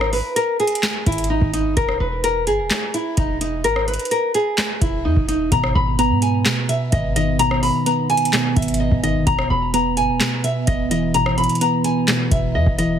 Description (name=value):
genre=hip hop, trap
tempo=128 BPM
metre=4/4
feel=half-time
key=unclear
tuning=A4 = 440 Hz
part: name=nylon-string guitar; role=melody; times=0.0-13.0 s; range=D#4 to B5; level=-20 LUFS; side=left 1 dB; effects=low-pass filter
part: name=clean 808-style bass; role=bass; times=0.0-13.0 s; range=E1 to G#2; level=-22 LUFS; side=equal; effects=none
part: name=booming analog drum machine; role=drums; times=0.0-12.9 s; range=handclaps, hi-hat, kick drum, rim click, snare drum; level=-22 LUFS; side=equal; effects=none
part: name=soft electric-piano-like synth keys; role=accompaniment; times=5.5-13.0 s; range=B2 to B3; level=-20 LUFS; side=right 1 dB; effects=chorus, low-pass filter
room=digital ambience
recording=heavily compressed radio sound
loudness=-16 LUFS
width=side -8 dB against mid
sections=0.0-5.5 A section; 5.5-13.0 B section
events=none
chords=0.0 Emaj7 (rootless); 1.8 E; 5.5 G#m; 9.3 E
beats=0.36 0.83 1.30 | 1.77 2.24 2.71 3.17 | 3.64 4.11 4.58 5.05 | 5.52 5.99 6.46 6.92 | 7.39 7.86 8.33 8.80 | 9.27 9.74 10.21 10.67 | 11.14 11.61 12.08 12.55